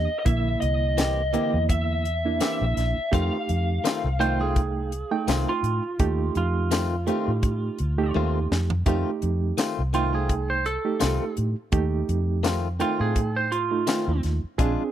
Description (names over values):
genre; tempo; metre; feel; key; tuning
straight-eighth soul blues; 84 BPM; 4/4; swing 56% on 16ths; F mixolydian; A4 = 440 Hz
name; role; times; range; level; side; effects
lead guitar through a small cranked amp; melody; 0.0-8.1 s; Eb5 to F5; -29 LUFS; left 1 dB; overdrive
reed electric piano; accompaniment; 0.0-14.9 s; D3 to G5; -28 LUFS; right 6 dB; fast tremolo
vintage muted fingered electric bass; bass; 0.0-14.7 s; Bb1 to A2; -26 LUFS; equal; none
tight funk drum kit; drums; 0.3-14.8 s; hi-hat, kick drum, snare drum, tambourine, toms; -26 LUFS; equal; none
direct-recorded clean electric guitar; stabs; 1.0-14.8 s; Eb3 to G4; -29 LUFS; left 8 dB; none
clean lap steel guitar; second line; 4.2-14.2 s; F4 to C5; -29 LUFS; right 4 dB; none
room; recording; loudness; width
little or no reverb; dry, close 1970s-style studio recording; -22 LUFS; side -11 dB against mid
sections
0.0-8.9 A section; 8.9-14.9 B section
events
drum fill 8.1-8.9; electric slide guitar solo 8.9-14.9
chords
0.0 C7; 3.1 F7